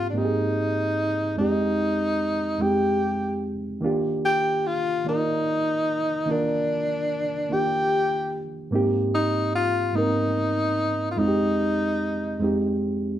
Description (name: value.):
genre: R&B.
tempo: 49 BPM (dotted quarters).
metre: 6/8.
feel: straight.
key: Eb major.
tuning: A4 = 440 Hz.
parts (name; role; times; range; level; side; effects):
mellow tenor saxophone; melody; 0.0-12.8 s; D4 to G4; -24 LUFS; left 1 dB; none.
reed electric piano; accompaniment; 0.0-13.2 s; F2 to D5; -25 LUFS; right 1 dB; overdrive.
room: moderate large studio reverb, RT60 0.9 s.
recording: band playing live in one room.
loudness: -22 LUFS.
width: side -11 dB against mid.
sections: 0.0-13.2 A section.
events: none.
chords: 0.0 Abmaj9; 1.4 Fm9; 3.8 Ebmaj7; 8.7 Abmaj9; 11.2 Fm9.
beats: 0.15 | 1.38 2.60 | 3.83 5.05 | 6.27 7.50 | 8.72 9.95 | 11.17 12.40.